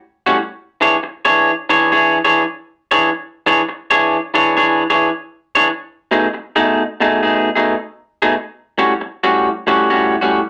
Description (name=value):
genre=blues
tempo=90 BPM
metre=4/4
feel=swing 67% on 8ths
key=E mixolydian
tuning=A4 = 440 Hz
part: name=electric guitar through a small old amp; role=solo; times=0.3-10.4 s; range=A2 to C#5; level=-15 LUFS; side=equal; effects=none
room=moderate studio ambience, RT60 0.5 s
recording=none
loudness=-16 LUFS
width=mono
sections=0.0-10.5 A section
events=none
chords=0.4 E6; 5.7 B6; 8.3 A6